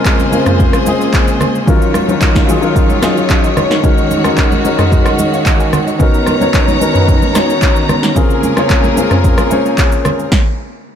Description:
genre	amapiano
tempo	111 BPM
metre	4/4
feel	straight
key	Bb minor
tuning	A4 = 440 Hz
part	dark concert grand piano	accompaniment	0.0-10.3 s	Gb3 to Ab5	-15 LUFS	left 3 dB	none
part	warm studio string section	sustained chords	0.0-10.3 s	Db3 to A#5	-16 LUFS	right 1 dB	sidechain pumping
part	deep house drum kit	drums	0.1-10.5 s	handclaps, kick drum, rim click, shaker, snare drum, toms	-13 LUFS	equal	none
part	congas	percussion	0.2-10.2 s	none	-21 LUFS	right 4 dB	none
room	moderate plate reverb, RT60 2.1 s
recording	dreamy mix soaked in reverb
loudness	-10 LUFS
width	side -8 dB against mid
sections	0.0-11.0 A section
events	stop 10.3-11.0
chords	0.0 Bbm9; 1.7 Ebm9; 6.0 Bmaj9; 8.2 Bbm9; 10.3 N.C.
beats	0.05 0.59 1.13 | 1.68 2.21 2.76 3.30 | 3.84 4.38 4.92 5.46 | 6.00 6.54 7.08 7.62 | 8.16 8.70 9.24 9.78 | 10.32

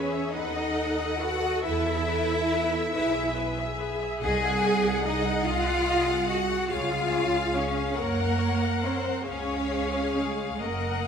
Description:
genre	classical, slow romantic movement for string orchestra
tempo	47 BPM (dotted quarters)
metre	6/8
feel	uneven beats, rubato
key	Db major from 4.2 s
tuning	A4 = 441 Hz
part	rich symphonic violin section	melody	0.0-11.1 s	E5 to F#5	-34 LUFS	left 5 dB	none
part	rich symphonic violin section	second line	0.0-11.1 s	Ab4 to Ab5	-33 LUFS	left 4 dB	none
part	rich chamber viola section	accompaniment	0.0-11.1 s	G#4 to F#5	-31 LUFS	left 2 dB	none
part	rich symphonic cello section	bass	0.0-11.1 s	Ab3 to Ab4	-28 LUFS	right 1 dB	none
part	rich symphonic double bass section	bass	0.0-11.1 s	Gb1 to Gb2	-32 LUFS	right 3 dB	none
room	moderate concert hall reverb, RT60 1.9 s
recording	none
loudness	-24 LUFS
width	side -7 dB against mid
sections	0.0-11.1 A section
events	none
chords	0.4 B7/D#; 1.7 E; 4.2 Ab7/C; 6.7 Db; 8.0 Gb; 9.3 Db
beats	0.36 | 1.65 2.96 | 4.22 5.45 | 6.70 7.97 | 9.27 10.62

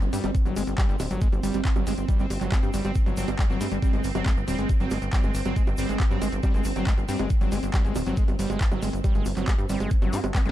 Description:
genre	psychedelic trance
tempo	138 BPM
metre	4/4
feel	straight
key	unclear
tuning	A4 = 440 Hz
part	pulsing gated texture	sustained chords	0.0-10.5 s	C4	-32 LUFS	right 2 dB	chorus, built-in reverb, sidechain pumping
part	plucky analog bass	bass	0.0-10.5 s	D1 to G2	-29 LUFS	equal	none
part	techno drum kit	drums	0.0-10.5 s	bongos, handclaps, hi-hat, snare drum	-34 LUFS	right 2 dB	overdrive, small room ambience
part	egg shaker	percussion	0.0-10.5 s	none	-46 LUFS	left 4 dB	none
part	overdriven acid bass	riff	0.1-10.5 s	F#3 to G4	-32 LUFS	moving between left 9 dB and right 7 dB	distortion, auto-pan, sidechain pumping, ping-pong delay
part	electronic kick drum	drums	0.3-10.4 s	none	-23 LUFS	equal	overdrive, small room ambience
room	little or no reverb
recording	dark, warm production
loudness	-22 LUFS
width	side -13 dB against mid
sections	0.0-10.5 A section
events	drum fill 10.3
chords	0.0 G5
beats	| 0.35 0.78 1.22 1.65 | 2.08 2.52 2.96 3.39 | 3.82 4.26 4.69 5.13 | 5.56 6.00 6.43 6.87 | 7.30 7.74 8.17 8.61 | 9.04 9.48 9.91 10.35

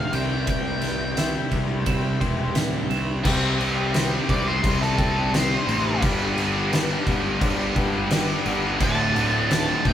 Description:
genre	quiet-loud alternative rock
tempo	86 BPM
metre	4/4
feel	straight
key	unclear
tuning	A4 = 440 Hz
part	octave-fuzz lead guitar	melody	0.0-9.9 s	A4 to A5	-27 LUFS	equal	distortion
part	twelve-string electric guitar	arpeggios	0.0-3.2 s	C3 to C5	-34 LUFS	right 5 dB	phaser
part	distorted electric guitar	riff	0.0-9.9 s	D2 to C5	-29 LUFS	left 7 dB	overdrive
part	overdriven semi-hollow guitar	riff	0.0-2.9, 8.8-9.9 s	D2 to C4	-29 LUFS	right 7 dB	none
part	fuzz picked electric bass	bass	0.0-9.9 s	D1 to C2	-27 LUFS	equal	overdrive
part	oversized low-tuned drum kit	drums	0.1-9.9 s	crash cymbal, kick drum, ride cymbal, snare drum	-24 LUFS	right 1 dB	none
part	tight distorted guitar	riff	3.2-9.9 s	D2 to C4	-27 LUFS	equal	distortion
room	light reverb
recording	band playing live in one room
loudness	-20 LUFS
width	side -10 dB against mid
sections	0.0-3.2 A section; 3.2-9.9 B section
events	lead electric guitar solo 3.2-9.9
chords	0.1 C; 3.2 C5; 6.0 G5; 8.8 D5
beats	| 0.47 1.16 1.86 2.55 | 3.25 3.94 4.63 5.33 | 6.02 6.71 7.41 8.10 | 8.80 9.49

